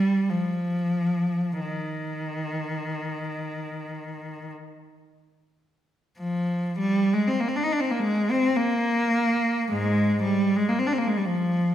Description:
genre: classical, free, expressive piece for unaccompanied cello.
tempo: 31-59 BPM.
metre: 3/4.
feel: rubato.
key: unclear.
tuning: A4 = 440 Hz.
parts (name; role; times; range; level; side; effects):
rich cello; solo; 0.0-11.7 s; Ab2 to Eb4; -23 LUFS; equal; none.
room: wet scoring stage reverb, RT60 1.5 s.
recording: none.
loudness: -23 LUFS.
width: side -11 dB against mid.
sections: 0.0-6.2 A section; 6.2-11.7 A section.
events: none.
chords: none.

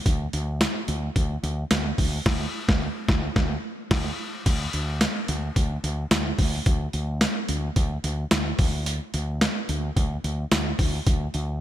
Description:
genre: 1980s-style pop.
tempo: 109 BPM.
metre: 4/4.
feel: swing 55% on 16ths.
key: unclear.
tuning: A4 = 440 Hz.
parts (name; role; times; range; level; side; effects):
fretless electric bass; bass; 0.1-11.6 s; D2; -27 LUFS; equal; none.
boom bap sampler-style drum kit; drums; 0.1-11.5 s; crash cymbal, hi-hat, kick drum, snare drum, tambourine; -24 LUFS; equal; overdrive.
room: light reverb.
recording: bright 1980s-style digital production.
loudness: -23 LUFS.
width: side -12 dB against mid.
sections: 0.0-4.5 A section; 4.5-11.6 A section.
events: band accent 2.3-4.5.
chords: none.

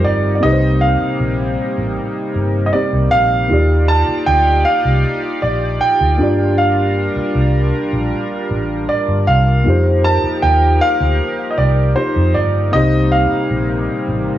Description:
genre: contemporary R&B.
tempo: 78 BPM.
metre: 4/4.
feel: straight.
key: unclear.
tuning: A4 = 443 Hz.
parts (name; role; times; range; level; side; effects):
warm grand piano; melody; 0.0-14.2 s; C5 to A5; -18 LUFS; right 2 dB; tape echo.
muted felt-like synth keys; accompaniment; 0.0-14.4 s; G3 to D5; -20 LUFS; left 1 dB; chorus, cassette tape.
chorused pulse-width pad; sustained chords; 0.0-14.4 s; C3 to D5; -25 LUFS; equal; cassette tape.
vintage muted fingered electric bass; bass; 0.0-14.3 s; G1 to F2; -16 LUFS; equal; none.
room: little or no reverb.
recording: home recording on cassette, small room ambience.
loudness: -13 LUFS.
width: side -12 dB against mid.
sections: 0.0-14.4 A section.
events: none.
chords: 0.4 Cm7; 3.5 Ebmaj9; 6.2 Gm7; 9.7 F9sus4; 12.7 Cm7.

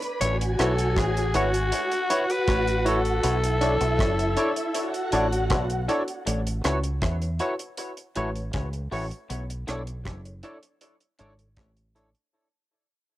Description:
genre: lovers rock reggae.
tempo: 79 BPM.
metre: 4/4.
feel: straight.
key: A major.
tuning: A4 = 439 Hz.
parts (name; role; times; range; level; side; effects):
soft string machine; second line; 0.0-6.2 s; E4 to B5; -29 LUFS; equal; ensemble chorus, cassette tape, plate reverb.
deep reggae drum kit; drums; 0.0-12.3 s; hi-hat, kick drum, rim click; -30 LUFS; right 1 dB; cassette tape.
raspy alto saxophone; melody; 0.2-5.5 s; F#4 to C#5; -28 LUFS; left 1 dB; cassette tape, tape echo, plate reverb.
electric guitar through a small old amp; riff; 0.2-11.8 s; F#3 to E4; -39 LUFS; left 4 dB; spring reverb, cassette tape, tape echo.
deep dub fingered electric bass; bass; 0.2-12.1 s; F#1 to E2; -27 LUFS; equal; none.
barky tine electric piano; accompaniment; 0.6-12.1 s; D4 to C#5; -30 LUFS; left 2 dB; overdrive, cassette tape, tape echo, plate reverb.
clean electric guitar; stabs; 0.6-12.1 s; E4 to D5; -34 LUFS; right 3 dB; ensemble chorus, cassette tape, tape echo, plate reverb.
room: light reverb.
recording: home recording on cassette.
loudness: -23 LUFS.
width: side -15 dB against mid.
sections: 0.0-6.3 A section; 6.3-12.3 B section.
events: fade-out 6.3-12.3.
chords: 0.2 A6; 3.2 Bm11; 6.3 A6; 9.3 Bm11.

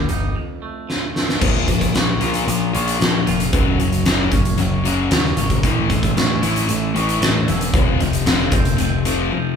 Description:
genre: quiet-loud alternative rock.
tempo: 114 BPM.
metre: 4/4.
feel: straight.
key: unclear.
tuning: A4 = 440 Hz.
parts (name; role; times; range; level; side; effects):
twangy electric guitar; arpeggios; 0.0-9.6 s; Eb2 to F4; -26 LUFS; right 4 dB; none.
growling picked electric bass; bass; 0.0-9.3 s; E1 to Eb2; -23 LUFS; right 1 dB; overdrive.
huge arena drum kit; drums; 0.1-9.2 s; crash cymbal, hi-hat, kick drum, snare drum; -19 LUFS; equal; none.
thick fuzz guitar; riff; 1.4-9.6 s; F2 to Bb3; -20 LUFS; left 6 dB; distortion.
room: light reverb.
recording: band playing live in one room.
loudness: -16 LUFS.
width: side -7 dB against mid.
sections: 0.0-1.4 A section; 1.4-9.6 B section.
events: break 0.4-1.4, 9.3; drum fill 0.9-1.4.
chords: 0.4 F; 1.4 Bbm; 3.5 Gb; 5.6 A; 7.7 F.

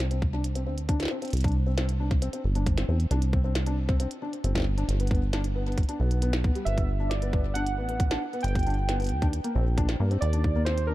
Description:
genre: IDM.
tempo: 135 BPM.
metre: 4/4.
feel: straight.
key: unclear.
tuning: A4 = 440 Hz.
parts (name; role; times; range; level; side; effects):
felt-muted upright piano; arpeggios; 0.0-10.9 s; G3 to D4; -34 LUFS; left 2 dB; low-pass filter, shimmer reverb, digital delay.
deep acid bass; bass; 0.0-10.9 s; G1 to G2; -26 LUFS; equal; tube saturation.
glitchy drum kit; drums; 0.0-10.9 s; hi-hat, snare drum; -36 LUFS; equal; overdrive, digital delay.
electronic kick drum; drums; 0.2-10.5 s; none; -27 LUFS; equal; overdrive.
warbly lo-fi synth keys; melody; 6.7-10.9 s; Bb4 to G5; -33 LUFS; right 3 dB; chorus, shimmer reverb, digital delay.
room: little or no reverb.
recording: dark, warm production.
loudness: -24 LUFS.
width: side -16 dB against mid.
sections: 0.0-10.9 A section.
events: filter sweep on felt piano 0.0-10.9.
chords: 0.0 Csus2; 4.9 Gmaj7; 9.1 Ebmaj7(no3).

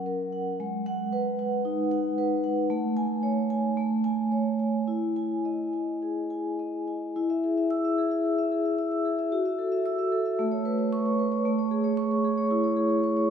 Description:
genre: classical, contemporary piece for solo vibraphone.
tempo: 112 BPM.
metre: 4/4.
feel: rubato.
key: E major.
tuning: A4 = 440 Hz.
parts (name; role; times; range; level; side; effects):
vibraphone with soft mallets; solo; 0.0-13.3 s; F#3 to E6; -25 LUFS; equal; none.
room: wet church reverb, RT60 3.5 s.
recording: recorded in a church or concert hall.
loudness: -25 LUFS.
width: side -8 dB against mid.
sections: 0.0-7.2 A section; 7.2-13.3 B section.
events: none.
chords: 0.0 F#; 0.6 G#m7; 2.7 Amaj7; 4.9 Emaj7; 7.2 E; 9.3 F#m7; 10.4 Aadd9; 11.5 Amaj7.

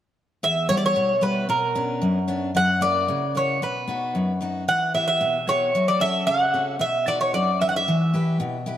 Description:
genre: greek folk.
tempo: 113 BPM.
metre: 2/4.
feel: straight.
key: E dorian sharp4.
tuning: A4 = 440 Hz.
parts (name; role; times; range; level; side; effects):
Greek bouzouki; melody; 0.4-8.4 s; A#4 to F#5; -21 LUFS; right 1 dB; none.
picked steel-string acoustic guitar; accompaniment; 0.4-8.8 s; E2 to B4; -25 LUFS; left 1 dB; none.
room: wet plate reverb, RT60 3.0 s.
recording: heard from further back in the room.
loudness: -20 LUFS.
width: side -11 dB against mid.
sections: 0.4-8.8 A section.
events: none.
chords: 0.4 Em; 1.5 Bmadd9; 2.6 F#7; 3.6 B; 4.7 Em; 5.7 F#m; 6.8 B; 7.9 Em.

